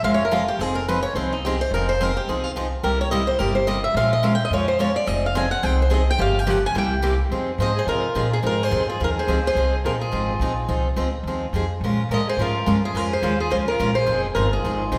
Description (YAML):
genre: acoustic string swing (jazz manouche)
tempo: 214 BPM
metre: 4/4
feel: swing 57% on 8ths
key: F minor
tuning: A4 = 440 Hz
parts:
  - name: picked swing-style acoustic guitar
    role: melody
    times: 0.0-15.0 s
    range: Eb4 to Ab5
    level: -26 LUFS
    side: equal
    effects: none
  - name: picked steel-string acoustic guitar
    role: accompaniment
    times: 0.0-15.0 s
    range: C3 to Bb4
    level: -27 LUFS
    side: equal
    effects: none
  - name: upright bass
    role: bass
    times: 0.0-15.0 s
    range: F1 to C3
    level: -27 LUFS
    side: equal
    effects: none
  - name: warm violin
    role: second line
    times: 7.6-15.0 s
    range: F4 to C5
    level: -32 LUFS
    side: equal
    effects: none
room: wet recital hall reverb, RT60 1.5 s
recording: recorded in a church or concert hall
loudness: -22 LUFS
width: mono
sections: 0.0-7.3 A section; 7.3-15.0 B section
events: steel-string acoustic guitar solo 0.0-7.3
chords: 0.0 Bbm7; 0.6 Fm7; 2.8 C7; 4.0 Bbm7; 5.1 Fm7; 6.2 Gm7b5; 6.8 C7; 7.3 Fm7; 11.8 Bbm7; 14.1 Fm7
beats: 0.03 0.31 | 0.59 0.87 1.15 1.43 | 1.71 1.99 2.27 2.55 | 2.83 3.11 3.39 3.67 | 3.95 4.23 4.51 4.79 | 5.07 5.35 5.63 5.91 | 6.19 6.47 6.75 7.03 | 7.31 7.59 7.87 8.15 | 8.44 8.72 9.00 9.28 | 9.56 9.84 10.12 10.41 | 10.69 10.97 11.25 11.53 | 11.81 12.10 12.38 12.66 | 12.94 13.22 13.50 13.78 | 14.07 14.35 14.63 14.91